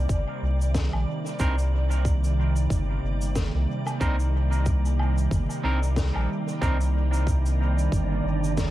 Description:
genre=ambient dub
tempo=92 BPM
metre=4/4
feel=swing 57% on 16ths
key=C minor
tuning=A4 = 442 Hz
part: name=soft additive organ-like pad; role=sustained chords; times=0.0-8.7 s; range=C3 to D5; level=-30 LUFS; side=right 1 dB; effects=ensemble chorus, built-in reverb, vintage 12-bit sampler grit
part: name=soft dub sub bass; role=bass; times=0.0-8.7 s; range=G1 to C2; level=-24 LUFS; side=equal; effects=none
part: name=cabasa, snare drum and woodblock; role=drums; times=0.1-8.7 s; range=none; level=-36 LUFS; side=left 2 dB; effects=dub echo
part: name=electronic kick drum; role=drums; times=0.1-8.7 s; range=none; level=-26 LUFS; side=equal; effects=none
part: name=electric guitar at the edge of break-up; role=stabs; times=1.4-6.8 s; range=C4 to Bb4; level=-34 LUFS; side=right 2 dB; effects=dub echo
part: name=wind-like tuned noise texture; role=texture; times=7.4-8.7 s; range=D4 to D5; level=-35 LUFS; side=right 2 dB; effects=built-in reverb
room=small room ambience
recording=vinyl crackle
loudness=-22 LUFS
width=side -15 dB against mid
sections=0.0-8.7 A section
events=none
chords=0.0 Cm9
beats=0.10 0.75 | 1.40 2.05 2.70 3.35 | 4.01 4.66 5.31 5.96 | 6.62 7.27 7.92 8.57

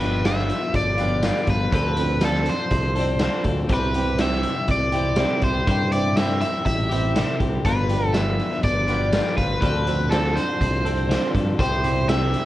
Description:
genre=indie rock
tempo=122 BPM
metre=4/4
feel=straight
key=G mixolydian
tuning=A4 = 440 Hz
part: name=cranked stack guitar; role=melody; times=0.0-12.5 s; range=A4 to E5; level=-25 LUFS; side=equal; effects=overdrive, slapback echo
part: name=electric guitar through a small old amp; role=riff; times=0.0-12.4 s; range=E3 to A4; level=-30 LUFS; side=right 6 dB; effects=wide subtle chorus, slapback echo
part: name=twelve-string electric guitar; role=riff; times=0.0-12.5 s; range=G2 to A4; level=-27 LUFS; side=left 4 dB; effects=none
part: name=picked electric bass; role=bass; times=0.0-12.3 s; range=G1 to G2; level=-24 LUFS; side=equal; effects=none
part: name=raw garage drum kit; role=drums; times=0.0-12.4 s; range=hi-hat, kick drum, snare drum, tambourine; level=-25 LUFS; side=equal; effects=none
room=light reverb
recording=worn, warbling old tape, cassette tape, warbly pitch drift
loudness=-19 LUFS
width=side -15 dB against mid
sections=0.0-12.5 A section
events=none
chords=0.0 G7; 1.7 Dm7; 3.7 C; 7.7 G7; 9.6 Dm7; 11.6 C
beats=0.26 0.75 1.24 | 1.73 2.23 2.72 3.21 | 3.71 4.20 4.69 5.19 | 5.68 6.17 6.67 7.16 | 7.65 8.14 8.64 9.13 | 9.62 10.12 10.61 11.10 | 11.59 12.09

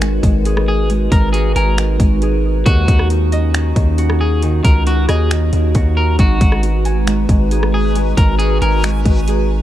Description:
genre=hip hop, atmospheric cloud-rap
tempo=136 BPM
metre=4/4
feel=half-time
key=G# minor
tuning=A4 = 440 Hz
part: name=warbly tape-like pad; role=sustained chords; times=0.0-9.6 s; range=G#3 to A#5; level=-21 LUFS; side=right 1 dB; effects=chorus, built-in reverb, sidechain pumping
part: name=Celtic harp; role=arpeggios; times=0.0-9.6 s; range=D#3 to G#5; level=-23 LUFS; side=equal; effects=low-pass filter, tape echo
part: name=long sustained 808-style bass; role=bass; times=0.0-9.6 s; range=G#1 to D#2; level=-16 LUFS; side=equal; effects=none
part: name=trap drum kit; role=drums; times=0.0-9.4 s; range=finger snaps, hi-hat, kick drum, rim click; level=-15 LUFS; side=equal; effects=none
part: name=electric guitar at the edge of break-up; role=melody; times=0.7-8.8 s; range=F#4 to A#4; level=-23 LUFS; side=left 1 dB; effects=low-pass filter, tape echo
part: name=backwards swelling texture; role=texture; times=7.0-9.6 s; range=F#4 to G#5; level=-33 LUFS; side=equal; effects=built-in reverb
room=little or no reverb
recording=dark, warm production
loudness=-12 LUFS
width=side -13 dB against mid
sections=0.0-9.6 A section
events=none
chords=0.0 G#m7; 2.7 D#m7; 6.2 G#m7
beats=0.01 0.46 | 0.90 1.34 1.78 2.22 | 2.66 3.10 3.54 3.98 | 4.43 4.87 5.31 5.75 | 6.19 6.63 7.07 7.51 | 7.96 8.40 8.84 9.28

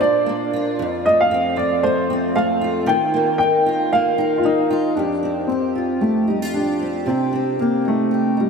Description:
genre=pop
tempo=115 BPM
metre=4/4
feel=swing 55% on 16ths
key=F mixolydian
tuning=A4 = 440 Hz
part: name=dark upright piano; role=melody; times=0.0-8.5 s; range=G3 to G5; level=-19 LUFS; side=right 1 dB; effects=wide subtle chorus
part: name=fingerpicked steel-string acoustic guitar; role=accompaniment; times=0.0-8.5 s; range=F2 to G4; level=-21 LUFS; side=left 1 dB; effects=double-tracked left and right
room=wet huge ambient reverb, RT60 4.9 s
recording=dreamy mix soaked in reverb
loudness=-17 LUFS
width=side -5 dB against mid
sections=0.0-5.0 A section; 5.0-8.5 B section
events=none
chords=0.0 Bb; 0.8 F; 2.9 Ebadd9; 5.0 Fsus2; 7.1 Cm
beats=0.26 | 0.79 1.31 1.83 2.35 | 2.88 3.40 3.92 4.45 | 4.97 5.50 6.02 6.55 | 7.07 7.60 8.12

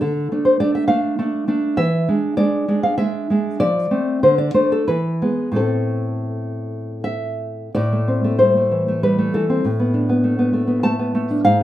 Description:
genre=romantic piece for solo classical guitar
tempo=76-105 BPM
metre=3/4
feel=rubato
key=A minor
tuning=A4 = 440 Hz
part: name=nylon-string guitar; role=solo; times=0.0-11.6 s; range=G#2 to A5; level=-16 LUFS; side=equal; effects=none
room=wet studio reverb, RT60 0.5 s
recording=rough home demo mix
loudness=-16 LUFS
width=side -13 dB against mid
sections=0.0-7.7 A section; 7.7-11.6 B section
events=none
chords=0.0 Dm; 1.8 E7; 3.6 F; 4.2 D5; 4.9 E; 5.6 Am; 9.6 Asus24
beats=| 0.02 0.60 1.18 | 1.78 2.38 2.99 | 3.60 4.21 4.87 | 5.56 6.29 7.05 | 7.75 8.39 9.02 | 9.63 10.23 10.83 | 11.44

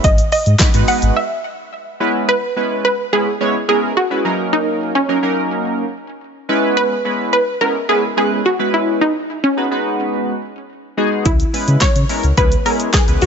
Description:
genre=dance-pop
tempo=107 BPM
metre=4/4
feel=straight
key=C# dorian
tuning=A4 = 440 Hz
part: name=wide unison pluck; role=melody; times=0.0-13.3 s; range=C#4 to F#5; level=-18 LUFS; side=right 1 dB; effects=digital delay
part: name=chorused polysynth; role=accompaniment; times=0.0-13.3 s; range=F#3 to C#5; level=-19 LUFS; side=right 1 dB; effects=sidechain pumping
part: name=sub bass with octave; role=bass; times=0.0-1.1, 11.3-13.3 s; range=G#1 to C#3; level=-16 LUFS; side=equal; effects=sidechain pumping
part: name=deep house drum kit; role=drums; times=0.0-1.2, 11.3-13.3 s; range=handclaps, hi-hat, kick drum, shaker, snare drum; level=-15 LUFS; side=equal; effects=none
room=light reverb, digital ambience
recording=nothing above 7.9 kHz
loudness=-14 LUFS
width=side -6 dB against mid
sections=0.0-2.3 A section; 2.3-13.3 A section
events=break 1.2-2.3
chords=0.0 G#m7; 1.2 C#m7; 4.2 D#m7; 6.5 C#m7; 9.0 G#m7; 11.3 C#m7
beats=| 0.04 0.60 1.16 1.72 | 2.28 2.85 3.41 3.97 | 4.53 5.09 5.65 6.21 | 6.77 7.33 7.89 8.45 | 9.01 9.57 10.13 10.70 | 11.26 11.82 12.38 12.94

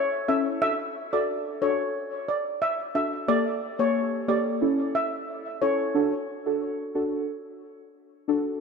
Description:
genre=dancehall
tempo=90 BPM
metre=4/4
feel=straight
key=D major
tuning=A4 = 440 Hz
part: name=steel pan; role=melody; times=0.0-5.7 s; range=C#5 to E5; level=-27 LUFS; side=equal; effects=diffuse ambient delay
part: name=deep mellow chord stab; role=accompaniment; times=0.0-8.6 s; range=Bb3 to A4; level=-27 LUFS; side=equal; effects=chorus
room=wet plate reverb, RT60 2.8 s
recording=dreamy mix soaked in reverb, nothing above 10.3 kHz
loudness=-24 LUFS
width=side -5 dB against mid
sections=0.0-8.6 A section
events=none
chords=0.0 A; 0.6 D; 3.3 Gmadd9; 4.6 A; 6.0 D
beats=| 0.62 1.28 1.95 2.62 | 3.28 3.95 4.62 5.28 | 5.95 6.62 7.28 7.95

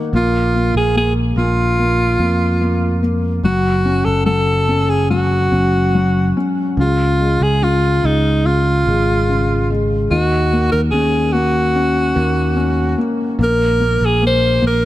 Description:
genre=pop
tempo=73 BPM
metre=4/4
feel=straight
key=unclear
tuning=A4 = 440 Hz
part: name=felt-muted upright piano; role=accompaniment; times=0.0-14.8 s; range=Db3 to Db4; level=-19 LUFS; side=left 2 dB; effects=none
part: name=picked electric bass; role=bass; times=0.1-14.8 s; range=Gb1 to F2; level=-17 LUFS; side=equal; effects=none
part: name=bright alto saxophone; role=melody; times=0.2-14.8 s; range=Eb4 to C5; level=-18 LUFS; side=equal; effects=none
room=light reverb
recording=none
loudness=-13 LUFS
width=side -14 dB against mid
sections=0.0-14.8 A section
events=none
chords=0.1 Bb5; 3.4 Gb5; 6.8 Db; 10.1 Ebm7; 13.4 Bb5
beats=| 0.13 0.95 1.78 2.61 | 3.43 4.26 5.10 5.94 | 6.78 7.61 8.45 9.28 | 10.10 10.93 11.75 12.57 | 13.39 14.21

